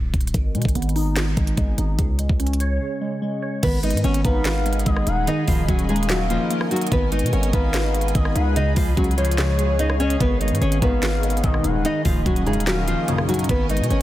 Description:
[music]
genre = hip hop, trap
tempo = 146 BPM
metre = 4/4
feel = half-time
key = G# dorian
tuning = A4 = 437 Hz
[part]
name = distorted 808-style bass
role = bass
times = 0.0-14.0 s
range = D#1 to B2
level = -22 LUFS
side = equal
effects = distortion
[part]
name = trap drum kit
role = drums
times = 0.1-14.0 s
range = crash cymbal, handclaps, hi-hat, kick drum, rim click, snare drum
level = -24 LUFS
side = equal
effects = none
[part]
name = glassy digital keys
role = accompaniment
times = 0.3-14.0 s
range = C#3 to C#5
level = -26 LUFS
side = right 1 dB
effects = chorus, low-pass filter
[part]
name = nylon-string guitar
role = melody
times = 3.6-14.0 s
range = E#3 to D#5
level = -24 LUFS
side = equal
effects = low-pass filter
[part]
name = granular cloud pad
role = sustained chords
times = 4.6-14.0 s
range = G#4 to C#6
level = -31 LUFS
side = equal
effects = built-in reverb
[part]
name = gliding portamento lead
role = second line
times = 4.2-13.5 s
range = C#5 to F#5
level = -31 LUFS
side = left 4 dB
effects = chorus, tape echo
[part]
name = chorused polysynth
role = stabs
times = 10.8-13.5 s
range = A#1 to D#3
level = -28 LUFS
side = left 2 dB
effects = phaser, tape echo
[sound]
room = little or no reverb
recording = dense, heavily limited modern master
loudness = -18 LUFS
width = side -14 dB against mid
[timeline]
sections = 0.0-3.6 A section; 3.6-14.0 B section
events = break 0.0-0.3, 2.8-3.6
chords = 0.3 G#m; 2.0 C#5; 3.6 G#m; 5.3 D#m7; 6.9 G#m; 8.6 C#; 10.2 G#m; 11.8 D#m7; 13.5 G#m

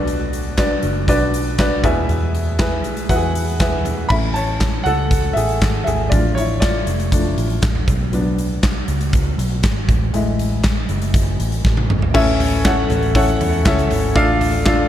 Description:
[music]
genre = piano-driven pop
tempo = 119 BPM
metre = 4/4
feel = straight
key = A major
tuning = A4 = 441 Hz
[part]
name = clear concert grand piano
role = accompaniment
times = 0.0-14.9 s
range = A2 to B5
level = -20 LUFS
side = left 1 dB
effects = none
[part]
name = vintage muted fingered electric bass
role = bass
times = 0.0-14.9 s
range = F1 to E2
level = -21 LUFS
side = equal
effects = none
[part]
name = huge arena drum kit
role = drums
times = 0.1-14.8 s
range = crash cymbal, handclaps, hi-hat, kick drum, snare drum, toms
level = -19 LUFS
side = equal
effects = none
[sound]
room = light reverb, studio reverb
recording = dark, warm production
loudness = -15 LUFS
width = side -11 dB against mid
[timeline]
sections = 0.0-4.1 A section; 4.1-12.1 B section; 12.1-14.9 C section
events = grand piano solo 4.1-12.1; drum fill 11.6-12.1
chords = 0.0 Bm; 1.8 E; 4.1 A; 6.1 Dm; 7.9 Bm; 9.9 F#m7; 12.1 A; 14.2 Dm

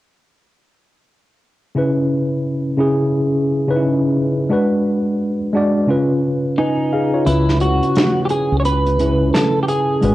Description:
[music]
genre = lo-fi hip hop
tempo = 87 BPM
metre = 4/4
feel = swing 62% on 16ths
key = C# minor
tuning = A4 = 440 Hz
[part]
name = tine electric piano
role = accompaniment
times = 1.8-10.1 s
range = C#3 to G#5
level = -16 LUFS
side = equal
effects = overdrive, fast stereo tremolo, cassette tape, plate reverb
[part]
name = clean electric guitar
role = melody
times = 6.6-10.1 s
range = D#4 to C#5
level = -18 LUFS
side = equal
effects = analog chorus, cassette tape, plate reverb, tape echo
[part]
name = mellow fretless electric bass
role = bass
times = 7.3-10.1 s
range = G#1 to C#2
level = -18 LUFS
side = equal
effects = tube saturation, wide subtle chorus
[part]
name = vintage brush drum kit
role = drums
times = 7.3-10.1 s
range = hi-hat, snare drum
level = -20 LUFS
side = equal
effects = cassette tape
[sound]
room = moderate studio reverb, RT60 0.6 s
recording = home recording on cassette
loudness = -15 LUFS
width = side -16 dB against mid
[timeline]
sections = 1.8-7.3 A section; 7.3-10.1 B section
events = kick muted 7.3-10.1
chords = 1.8 C#m7; 4.5 G#m7b5; 5.9 C#7; 7.3 C#m7

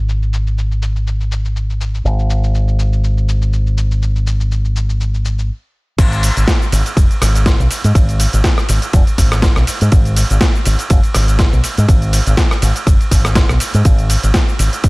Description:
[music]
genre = nu-disco, nu disco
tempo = 122 BPM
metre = 4/4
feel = swing 55% on 16ths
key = G# dorian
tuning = A4 = 441 Hz
[part]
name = fingered electric bass with an envelope filter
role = bass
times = 0.0-14.9 s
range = E#1 to G#2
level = -14 LUFS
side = equal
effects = sidechain pumping
[part]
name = dusty soul sampler-style drum kit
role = drums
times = 0.1-14.9 s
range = cabasa, crash cymbal, hi-hat, ride cymbal, rim click, snare drum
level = -19 LUFS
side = equal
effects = overdrive, low-pass filter on perc, small room ambience, low-pass filter on hats, low-pass filter on cymbals, low-pass filter on snare
[part]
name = electronic kick drum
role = drums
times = 6.0-14.9 s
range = none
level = -12 LUFS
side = equal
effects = small room ambience
[sound]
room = digital ambience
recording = none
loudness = -12 LUFS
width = side -24 dB against mid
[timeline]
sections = 0.0-6.0 A section; 6.0-14.9 B section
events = stop 5.5-6.0; drop 6.0-14.9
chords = none

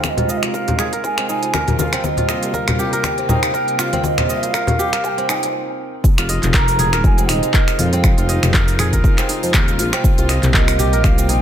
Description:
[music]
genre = afro house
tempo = 120 BPM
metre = 4/4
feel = swing 56% on 16ths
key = F minor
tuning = A4 = 441 Hz
[part]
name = mellow hollow bansuri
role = melody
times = 0.0-11.4 s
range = Eb5 to Bb5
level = -22 LUFS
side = right 3 dB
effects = ping-pong delay
[part]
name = rich chamber string section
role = sustained chords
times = 0.0-11.4 s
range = C3 to F4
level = -26 LUFS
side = equal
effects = vintage 12-bit sampler grit, sidechain pumping, low-pass filter
[part]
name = kora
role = arpeggios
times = 0.0-11.4 s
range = C4 to Eb5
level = -23 LUFS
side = equal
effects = sidechain pumping, low-pass filter, ping-pong delay
[part]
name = smooth synth bass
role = bass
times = 0.0-11.4 s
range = Eb1 to F2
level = -21 LUFS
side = equal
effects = sidechain pumping, high-pass filter
[part]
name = deep house drum kit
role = drums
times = 0.0-11.4 s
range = finger snaps, handclaps, hi-hat, shaker, toms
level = -21 LUFS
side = equal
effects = high-pass filter on perc, high-pass filter on hats, high-pass filter on snare, high-pass filter on toms, high-pass filter on room
[part]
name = electronic kick drum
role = drums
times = 0.0-11.2 s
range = none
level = -16 LUFS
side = equal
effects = high-pass filter on kick, high-pass filter on room
[part]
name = congas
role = percussion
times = 0.0-4.8 s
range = none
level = -21 LUFS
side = left 2 dB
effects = none
[sound]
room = light reverb, small room reverb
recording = none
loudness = -14 LUFS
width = side -10 dB against mid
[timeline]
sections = 0.0-6.0 A section; 6.0-11.4 B section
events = build-up 0.0-6.0; stop 5.5-6.0; drop 6.0-11.4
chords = 0.0 Fm7; 2.0 C7sus4; 6.0 Fm7; 10.0 C7sus4

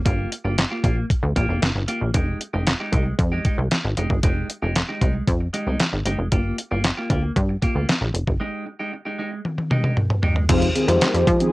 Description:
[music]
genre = early-eighties boogie funk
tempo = 115 BPM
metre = 4/4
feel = straight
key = F minor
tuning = A4 = 439 Hz
[part]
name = plucky analog bass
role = bass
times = 0.0-11.5 s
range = F1 to F3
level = -22 LUFS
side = equal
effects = none
[part]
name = clean electric guitar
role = riff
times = 0.1-10.4 s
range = Ab3 to G4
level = -28 LUFS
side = right 1 dB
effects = wide subtle chorus, cassette tape
[part]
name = detuned 8-bit digital drum machine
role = drums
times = 0.1-11.5 s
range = crash cymbal, handclaps, hi-hat, kick drum, snare drum, toms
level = -21 LUFS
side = equal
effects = cassette tape
[part]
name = mellow synth brass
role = second line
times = 10.5-11.5 s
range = C3 to C5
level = -22 LUFS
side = equal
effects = chorus, cassette tape, plate reverb
[part]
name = FM electric piano with tremolo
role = accompaniment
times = 10.5-11.3 s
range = Ab3 to C5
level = -22 LUFS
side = left 2 dB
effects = cassette tape, plate reverb
[part]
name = chorused pulse-width pad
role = sustained chords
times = 10.5-11.5 s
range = Eb3 to G4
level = -32 LUFS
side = right 1 dB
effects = none
[sound]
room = moderate booth ambience, RT60 0.2 s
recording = home recording on cassette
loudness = -19 LUFS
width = side -20 dB against mid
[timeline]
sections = 0.0-10.5 A section; 10.5-11.5 B section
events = drum fill 9.4-10.5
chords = 0.0 Gm7; 2.1 Fm9; 6.3 Gm7; 8.4 Ebadd11/Ab; 10.5 Fm9

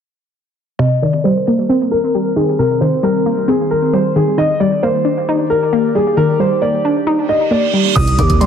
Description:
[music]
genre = hip hop, trap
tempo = 134 BPM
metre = 4/4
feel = half-time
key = C minor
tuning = A4 = 438 Hz
[part]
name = dark concert grand piano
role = melody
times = 0.8-8.5 s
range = Ab4 to Eb6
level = -16 LUFS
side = left 1 dB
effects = low-pass filter, dub echo
[part]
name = warbly dusty pluck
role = accompaniment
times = 0.8-8.5 s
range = C3 to Eb4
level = -16 LUFS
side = left 1 dB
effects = chorus, low-pass filter, dub echo
[part]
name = warbly tape-like pad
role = sustained chords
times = 0.8-8.5 s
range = Eb3 to Eb5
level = -22 LUFS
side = right 2 dB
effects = chorus, built-in reverb, phaser, low-pass filter
[part]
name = reverse cymbal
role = sound effects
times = 7.3-8.0 s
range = none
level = -21 LUFS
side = right 11 dB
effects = none
[part]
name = growling 808-style bass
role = bass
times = 8.0-8.5 s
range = C2 to Eb2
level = -15 LUFS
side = right 1 dB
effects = none
[part]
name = trap drum kit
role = drums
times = 8.0-8.5 s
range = crash cymbal, hi-hat, kick drum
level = -16 LUFS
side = right 1 dB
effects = none
[sound]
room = light reverb, digital ambience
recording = echo-heavy mix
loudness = -12 LUFS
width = side -8 dB against mid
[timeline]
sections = 0.8-8.0 A section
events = filter sweep 0.8-8.0; reverse cymbal 7.3-8.0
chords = 0.8 Cm7; 4.4 Ebmaj7; 8.0 Cm7

